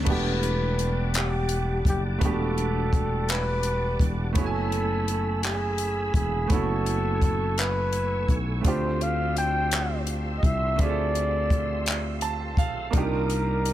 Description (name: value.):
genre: slow six-eight R&B.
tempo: 56 BPM (dotted quarters).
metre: 6/8.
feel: straight.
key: unclear.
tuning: A4 = 440 Hz.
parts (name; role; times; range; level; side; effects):
clear grand piano; accompaniment; 0.0-13.7 s; A3 to A5; -31 LUFS; right 6 dB; none.
sustaining fretless electric bass; bass; 0.0-13.7 s; E1 to D2; -28 LUFS; equal; wide subtle chorus.
breathy flugelhorn; melody; 0.1-13.7 s; G4 to G5; -29 LUFS; left 1 dB; none.
tonewheel organ; sustained chords; 0.1-13.7 s; G3 to E6; -36 LUFS; equal; overdrive, chorus vibrato, slow rotary speaker.
compact cocktail drum kit; drums; 0.1-13.7 s; crash cymbal, handclaps, hi-hat, kick drum; -26 LUFS; equal; none.
room: studio ambience.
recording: none.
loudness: -23 LUFS.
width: side -13 dB against mid.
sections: 0.1-13.7 A section.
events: grand piano fill 11.9-12.9.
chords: 0.1 Em11; 4.4 F#m11; 8.6 Dm11; 12.9 Cm11.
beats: | 0.07 1.14 | 2.21 3.29 | 4.36 5.43 | 6.50 7.57 | 8.64 9.71 | 10.79 11.86 | 12.93.